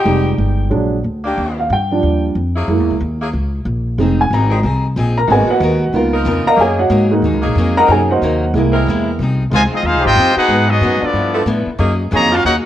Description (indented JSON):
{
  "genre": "jazz",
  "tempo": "184 BPM",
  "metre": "4/4",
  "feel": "swing 63% on 8ths",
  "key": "unclear",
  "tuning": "A4 = 440 Hz",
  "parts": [
    { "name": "warm upright piano", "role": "accompaniment", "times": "0.0-9.2 s", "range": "F3 to Bb5", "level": "-15 LUFS", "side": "right 2 dB", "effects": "none" },
    { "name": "clear saxophone section", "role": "sustained chords", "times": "0.0-9.2, 11.3-12.4 s", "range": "Eb3 to Bb4", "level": "-22 LUFS", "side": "left 1 dB", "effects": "none" },
    { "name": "upright bass", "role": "bass", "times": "0.1-12.6 s", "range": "F1 to A2", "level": "-17 LUFS", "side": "equal", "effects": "none" },
    { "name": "picked steel-string acoustic guitar", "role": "accompaniment", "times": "4.0-12.7 s", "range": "G2 to Bb4", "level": "-22 LUFS", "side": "left 3 dB", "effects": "none" },
    { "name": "clear trumpet section", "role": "melody", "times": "9.5-12.6 s", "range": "Cb4 to Bb5", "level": "-14 LUFS", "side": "equal", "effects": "none" },
    { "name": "clear trombone section", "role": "second line", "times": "9.5-12.5 s", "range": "C3 to G4", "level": "-20 LUFS", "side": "left 1 dB", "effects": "none" }
  ],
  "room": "light reverb",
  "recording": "worn, warbling old tape, cassette tape, warbly pitch drift",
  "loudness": "-12 LUFS",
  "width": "side -12 dB against mid",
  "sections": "0.0-9.2 A section; 9.2-12.7 B section",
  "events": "upright piano solo 0.0-9.2",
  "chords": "0.1 Fm9; 0.7 Bbaug7; 1.4 Ebmaj7; 2.7 Gb9; 4.0 Fm7; 5.3 Abm9; 5.9 Db13; 6.6 Gb69; 7.9 Cm7b5; 8.5 C7b13; 9.2 Fm7; 10.5 Abm7; 11.1 G13; 11.8 Gb69",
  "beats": "| 0.07 0.39 0.72 1.04 | 1.37 1.70 2.02 2.35 | 2.68 3.00 3.33 3.65 | 3.98 4.31 4.63 4.96 | 5.29 5.61 5.94 6.26 | 6.59 6.91 7.24 7.57 | 7.89 8.22 8.54 8.87 | 9.19 9.52 9.84 10.17 | 10.49 10.82 11.14 11.47 | 11.80 12.12 12.45"
}